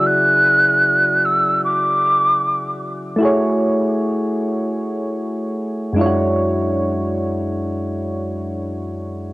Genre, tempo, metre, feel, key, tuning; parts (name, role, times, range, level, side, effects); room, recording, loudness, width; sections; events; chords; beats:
R&B; free time; A4 = 440 Hz
breathy mellow jazz flute; melody; 0.0-2.8 s; D6 to F#6; -14 LUFS; equal; low-pass filter, cassette tape, tape echo
soft electric-piano-like synth keys; accompaniment; 0.0-9.3 s; F#2 to D5; -19 LUFS; equal; chorus, low-pass filter
moderate spring reverb, RT60 2.0 s, small room ambience; home recording on cassette; -16 LUFS; side -20 dB against mid
0.0-9.3 A section
filter sweep 0.0-9.3
0.0 Dmaj9#11; 3.2 F#m9; 6.0 Dmaj9#11/F#
free time